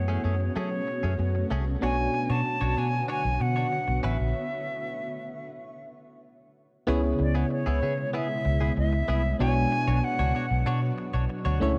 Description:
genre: pop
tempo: 95 BPM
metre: 4/4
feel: straight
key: B dorian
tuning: A4 = 440 Hz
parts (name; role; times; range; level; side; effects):
- silver concert flute; melody; 0.0-10.7 s; C#5 to A5; -33 LUFS; equal; digital delay
- FM electric piano; accompaniment; 0.0-11.8 s; B2 to C#5; -33 LUFS; equal; chorus
- granular cloud pad; sustained chords; 0.0-11.8 s; B2 to C#5; -37 LUFS; equal; built-in reverb
- vintage muted fingered electric bass; bass; 0.0-11.7 s; A1 to F#3; -29 LUFS; equal; none
- direct-recorded clean electric guitar; riff; 0.1-11.7 s; A3 to C#5; -39 LUFS; equal; subtle chorus, digital delay
room: light reverb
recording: dark, warm production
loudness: -27 LUFS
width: mono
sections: 0.0-6.9 A section; 6.9-11.8 B section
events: stop 4.4-6.9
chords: 0.0 F#madd9; 1.8 Bmadd9; 4.0 Aadd9; 6.9 C#m7; 9.4 Bmadd9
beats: 0.56 1.19 | 1.82 2.46 3.09 3.72 | 4.35 4.98 5.62 6.25 | 6.88 7.51 8.14 8.77 | 9.40 10.04 10.67 11.30

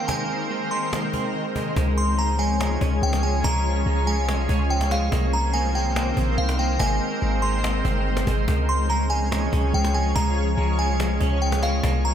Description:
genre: hip hop, atmospheric cloud-rap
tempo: 143 BPM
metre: 4/4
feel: half-time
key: Db lydian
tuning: A4 = 440 Hz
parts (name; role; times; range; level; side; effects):
- glassy synth bell; melody; 0.0-12.1 s; F5 to C6; -27 LUFS; equal; chorus, digital delay
- shimmering ambient pad; sustained chords; 0.0-12.1 s; Eb3 to Db5; -26 LUFS; equal; chorus, built-in reverb
- semi-hollow electric guitar; arpeggios; 0.0-12.1 s; Ab3 to Db4; -32 LUFS; right 7 dB; warbly pitch drift, digital delay
- cajon; drums; 0.1-12.1 s; none; -31 LUFS; left 1 dB; none
- warm 808-style bass; bass; 1.8-12.1 s; G1 to Db2; -23 LUFS; equal; none
room: digital ambience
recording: none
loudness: -20 LUFS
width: side -9 dB against mid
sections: 0.0-1.8 A section; 1.8-12.1 B section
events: filter sweep 0.0-1.8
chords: 0.1 Ab; 1.8 Db; 5.1 Cm7; 6.8 Abmaj7; 8.5 Db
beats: | 0.09 0.51 0.93 1.34 | 1.76 2.19 2.60 3.02 | 3.44 3.86 4.28 4.70 | 5.12 5.54 5.96 6.38 | 6.80 7.22 7.64 8.06 | 8.48 8.90 9.32 9.74 | 10.16 10.58 11.00 11.41 | 11.84

